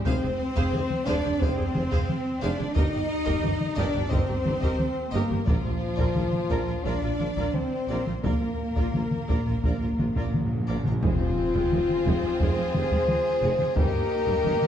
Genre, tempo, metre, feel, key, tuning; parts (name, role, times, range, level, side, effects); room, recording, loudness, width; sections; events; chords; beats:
cinematic, epic orchestral film score; 88 BPM; 4/4; straight; Bb mixolydian; A4 = 437 Hz
rich symphonic violin section; second line; 0.0-14.7 s; Bb3 to Eb5; -37 LUFS; left 2 dB
clear French horn section; sustained chords; 0.0-14.7 s; F3 to C5; -28 LUFS; left 3 dB
rich symphonic cello section; bass; 0.0-14.5 s; F2 to Eb4; -34 LUFS; right 2 dB
rich chamber violin section; melody; 0.1-14.7 s; C4 to F5; -40 LUFS; left 4 dB
rich symphonic viola section; accompaniment; 0.1-14.7 s; C3 to C5; -36 LUFS; right 1 dB
rich symphonic double bass section; bass; 0.1-14.5 s; F1 to Bb1; -32 LUFS; right 2 dB
warm tuba; bass; 0.1-14.5 s; F1 to Bb1; -36 LUFS; right 3 dB
taiko ensemble; drums; 0.1-14.7 s; -28 LUFS; equal
timpani; percussion; 5.5-12.0 s; F2 to Bb2; -32 LUFS; equal
silver concert flute; second line; 11.0-14.7 s; C4 to Ab4; -35 LUFS; equal
clear symphonic string section; sustained chords; 11.0-14.7 s; Bb3 to Eb5; -36 LUFS; right 1 dB
impact; sound effects; 11.0-13.8 s; -35 LUFS; equal
wet scoring stage reverb, RT60 1.8 s; dark, warm production; -23 LUFS; side -9 dB against mid
0.0-11.0 A section; 11.0-14.7 A section
timpani fill 8.2-11.0; impact 11.0-13.8
0.1 Fm; 2.8 Eb/G; 5.5 Bb; 11.0 Fm; 13.8 Eb/G
| 0.06 0.74 1.41 2.09 | 2.76 3.44 4.12 4.80 | 5.47 6.15 6.85 7.54 | 8.23 8.94 9.63 10.33 | 11.03 11.71 12.41 13.09 | 13.77 14.45